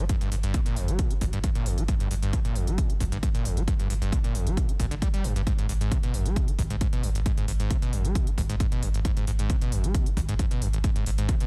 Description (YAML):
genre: driving peak-time techno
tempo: 134 BPM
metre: 4/4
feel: straight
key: unclear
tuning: A4 = 440 Hz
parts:
  - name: screaming distorted acid line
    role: riff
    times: 0.0-11.5 s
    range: Ab1 to Ab3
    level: -33 LUFS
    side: equal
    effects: distortion, chorus, sidechain pumping, digital delay
  - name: warm sub bass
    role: bass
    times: 0.0-11.3 s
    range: G1 to Ab1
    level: -30 LUFS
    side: equal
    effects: tube saturation, sidechain pumping, low-pass filter
  - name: electronic hi-hat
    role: drums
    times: 0.1-11.5 s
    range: none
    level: -42 LUFS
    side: equal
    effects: overdrive, sidechain pumping on hats, studio reverb
  - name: electronic kick drum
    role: drums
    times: 0.1-11.4 s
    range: none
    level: -28 LUFS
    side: equal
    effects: overdrive, studio reverb
room: little or no reverb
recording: none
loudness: -26 LUFS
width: mono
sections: 0.0-11.5 A section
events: none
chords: 0.0 Gm; 5.5 Abm